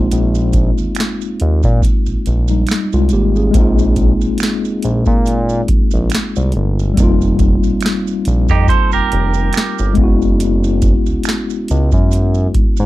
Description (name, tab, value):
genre	R&B, neo-soul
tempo	70 BPM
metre	4/4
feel	swing 55% on 16ths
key	unclear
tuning	A4 = 440 Hz
part	mellow tine electric piano	accompaniment	0.0-12.9 s	G3 to Ab4	-18 LUFS	left 2 dB	medium stereo tremolo
part	smooth synth bass	bass	0.0-12.9 s	F1 to Bb2	-15 LUFS	equal	none
part	booming analog drum machine	drums	0.1-12.8 s	hi-hat, kick drum, snare drum	-16 LUFS	equal	none
part	maracas and finger snaps	percussion	0.1-12.9 s	none	-29 LUFS	right 13 dB	none
part	clean electric guitar	second line	8.5-9.9 s	Eb4 to C5	-18 LUFS	right 9 dB	vibrato effect
room	light reverb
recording	dark, warm production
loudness	-12 LUFS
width	side -16 dB against mid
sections	0.0-3.5 A section; 3.5-12.9 B section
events	none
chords	0.0 Bb9sus4; 7.0 F9sus4; 10.0 Gb9sus4